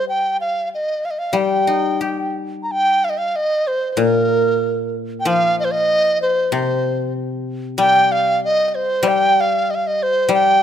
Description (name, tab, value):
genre	chinese traditional, Chinese chamber ensemble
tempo	94 BPM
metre	4/4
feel	rubato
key	G jue mode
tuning	A4 = 436 Hz
part	mellow large dizi	melody	0.0-10.6 s	Bb4 to Bb5	-17 LUFS	right 1 dB	none
part	guzheng	accompaniment	0.0-10.6 s	Bb2 to G4	-21 LUFS	left 4 dB	none
room	light reverb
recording	close, detailed microphones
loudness	-16 LUFS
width	side -9 dB against mid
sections	0.0-2.7 A section; 2.7-10.6 B section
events	none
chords	none